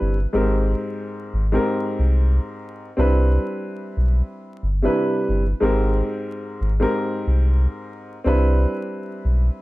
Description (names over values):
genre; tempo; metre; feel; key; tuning
hip hop, boom-bap hip-hop; 91 BPM; 4/4; swing 61% on 16ths; unclear; A4 = 439 Hz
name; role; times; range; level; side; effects
dark upright piano; accompaniment; 0.0-9.6 s; Ab2 to B4; -23 LUFS; equal; cassette tape, high-pass filter, low-pass filter
warm sub bass; bass; 0.0-9.5 s; G1 to C2; -18 LUFS; equal; none
room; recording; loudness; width
small room ambience; vinyl crackle; -19 LUFS; side -19 dB against mid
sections
0.0-9.6 A section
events
none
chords
0.3 Abmaj7; 3.0 Cmaj7; 5.6 Abmaj7; 8.3 Cmaj7